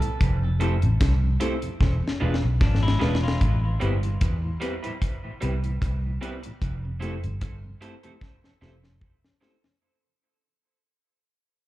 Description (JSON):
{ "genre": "lovers rock reggae", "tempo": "75 BPM", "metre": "4/4", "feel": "swing 55% on 16ths", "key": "A minor", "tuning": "A4 = 438 Hz", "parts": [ { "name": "bluegrass banjo", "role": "melody", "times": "0.0-1.0 s", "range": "A4", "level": "-39 LUFS", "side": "right 4 dB", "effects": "tape echo, slapback echo" }, { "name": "mellow tonewheel organ", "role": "accompaniment", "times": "0.0-9.7 s", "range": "E2 to G4", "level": "-38 LUFS", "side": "left 2 dB", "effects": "none" }, { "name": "deep reggae drum kit", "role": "drums", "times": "0.0-9.8 s", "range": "hi-hat, kick drum, rim click, snare drum", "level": "-25 LUFS", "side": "equal", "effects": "none" }, { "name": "vintage muted fingered electric bass", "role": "bass", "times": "0.2-9.0 s", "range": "E1 to E2", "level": "-24 LUFS", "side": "equal", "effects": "none" }, { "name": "mellow tine electric piano", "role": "accompaniment", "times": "0.6-9.6 s", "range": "A3 to G#4", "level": "-34 LUFS", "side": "left 2 dB", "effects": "medium stereo tremolo, slapback echo" }, { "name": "electric guitar through a small old amp", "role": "stabs", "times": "0.6-9.7 s", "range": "G3 to C5", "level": "-34 LUFS", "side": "right 4 dB", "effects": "wide subtle chorus, dub echo, slapback echo" }, { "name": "semi-hollow electric guitar", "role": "arpeggios", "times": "2.6-3.6 s", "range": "F3 to F4", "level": "-33 LUFS", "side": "left 5 dB", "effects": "dub echo, slapback echo" } ], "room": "studio ambience", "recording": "live gig heard through the venue's PA, club reverb", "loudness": "-22 LUFS", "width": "side -16 dB against mid", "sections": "0.0-3.4 A section; 3.4-9.8 B section", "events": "drum fill 1.8-3.4, 8.2-9.8; fade-out 3.4-9.8", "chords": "0.2 Fmaj7; 1.8 E7b9; 3.4 Am9; 6.6 Fmaj7" }